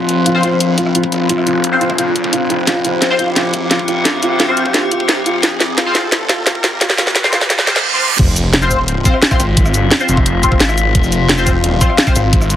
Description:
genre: dark technical drum and bass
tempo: 174 BPM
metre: 4/4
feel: straight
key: F minor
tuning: A4 = 440 Hz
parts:
  - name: metallic inharmonic drone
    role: sustained chords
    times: 0.0-12.6 s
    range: F3 to G4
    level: -18 LUFS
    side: left 2 dB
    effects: chorus, built-in reverb, phaser, sidechain pumping
  - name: snarling distorted saw bass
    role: bass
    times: 0.0-12.6 s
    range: F1 to F2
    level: -19 LUFS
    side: equal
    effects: distortion, tube saturation, high-pass filter
  - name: riser, reverse cymbal and sub drop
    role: sound effects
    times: 1.1-9.6 s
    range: none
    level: -23 LUFS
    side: right 2 dB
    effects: none
  - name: drum and bass drum kit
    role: drums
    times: 0.1-12.6 s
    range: crash cymbal, hi-hat, rim click, shaker, snare drum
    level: -14 LUFS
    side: equal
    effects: none
  - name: felt-muted upright piano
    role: arpeggios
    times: 0.3-7.5 s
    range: F4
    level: -21 LUFS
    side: right 1 dB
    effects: sidechain pumping, dub echo
  - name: band-passed chord stab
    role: stabs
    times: 0.3-12.2 s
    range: C4 to C5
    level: -19 LUFS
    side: left 2 dB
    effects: phaser, ensemble chorus, dub echo
  - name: electronic kick drum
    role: drums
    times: 0.4-12.4 s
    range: none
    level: -16 LUFS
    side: equal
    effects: high-pass filter on kick, high-pass filter on room
room: light reverb, digital ambience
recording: heavily compressed radio sound, multiband compression, high-pass filter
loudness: -11 LUFS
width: side -11 dB against mid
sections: 0.0-8.2 A section; 8.2-12.6 B section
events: build-up 0.0-8.2; filter sweep 0.0-8.2; riser 1.1-7.8; drum fill 2.7-7.8; reverse cymbal 7.5-8.2; drop 8.2-12.6; impact 8.2-9.6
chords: 0.0 F5

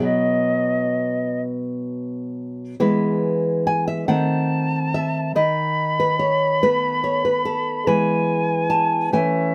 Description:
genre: romantic duo for flute and classical guitar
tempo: 42-48 BPM (dotted quarters)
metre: 6/8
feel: rubato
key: E major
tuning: A4 = 440 Hz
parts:
  - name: silver concert flute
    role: melody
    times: 0.0-9.5 s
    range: D#5 to B5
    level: -26 LUFS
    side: equal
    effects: none
  - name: nylon-string guitar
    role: accompaniment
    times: 0.0-9.5 s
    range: B2 to A5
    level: -22 LUFS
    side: equal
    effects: none
room: moderate studio reverb, RT60 0.6 s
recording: none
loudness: -21 LUFS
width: mono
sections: 0.0-2.8 A section; 2.8-9.5 B section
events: none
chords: 0.0 B; 2.8 E; 4.1 D#dim7; 5.4 B7/D#; 7.9 E

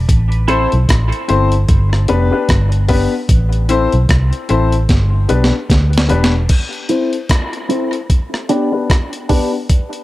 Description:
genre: dub reggae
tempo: 75 BPM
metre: 4/4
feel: swing 58% on 16ths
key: A minor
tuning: A4 = 440 Hz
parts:
  - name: vintage muted fingered electric bass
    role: bass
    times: 0.0-6.5 s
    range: E1 to D2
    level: -14 LUFS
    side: equal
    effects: none
  - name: breakbeat sampler-style drum kit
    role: drums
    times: 0.1-10.0 s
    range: crash cymbal, hi-hat, kick drum, rim click, snare drum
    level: -15 LUFS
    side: equal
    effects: none
  - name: clean electric guitar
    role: accompaniment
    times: 0.5-0.7, 6.9-9.5 s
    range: D4 to C5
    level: -22 LUFS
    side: right 4 dB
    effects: analog chorus, low-pass filter, tape echo
  - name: clear upright piano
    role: stabs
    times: 0.5-9.5 s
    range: B3 to C5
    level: -18 LUFS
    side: left 4 dB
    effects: low-pass filter, tape echo
room: light reverb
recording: none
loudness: -12 LUFS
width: side -16 dB against mid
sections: 0.0-6.5 A section; 6.5-10.0 B section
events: drum fill 4.9-6.5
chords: 0.1 Am; 1.7 G; 3.3 Am; 4.9 G; 6.5 Am; 8.1 G

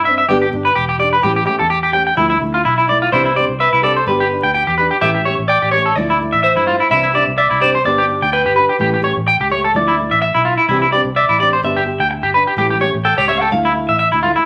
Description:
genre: highlife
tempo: 127 BPM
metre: 4/4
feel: swing 55% on 16ths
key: C major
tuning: A4 = 440 Hz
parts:
  - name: fingered electric bass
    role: bass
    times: 0.0-14.3 s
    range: E1 to G2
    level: -26 LUFS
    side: equal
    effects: none
  - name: nylon-string guitar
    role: accompaniment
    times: 0.1-14.4 s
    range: E3 to G4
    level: -24 LUFS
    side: equal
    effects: none
  - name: electric guitar at the edge of break-up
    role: arpeggios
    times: 0.1-14.4 s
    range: E4 to G5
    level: -17 LUFS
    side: equal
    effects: none
  - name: clean electric guitar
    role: melody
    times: 3.1-14.0 s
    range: G4 to G5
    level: -20 LUFS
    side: equal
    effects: none
room: moderate club reverb, RT60 0.9 s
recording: tape saturation, vinyl crackle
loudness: -15 LUFS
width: mono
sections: 0.0-3.1 A section; 3.1-14.5 B section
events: clean electric guitar solo 3.1-14.5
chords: 0.3 G; 1.2 A7; 2.2 Dmadd9; 3.1 Cadd9; 4.1 G; 5.0 A7; 6.0 Dmadd9; 6.9 Cadd9; 7.9 G; 8.8 A7; 9.7 Dmadd9; 10.7 Cadd9; 11.6 G; 12.6 A7; 13.5 Dmadd9

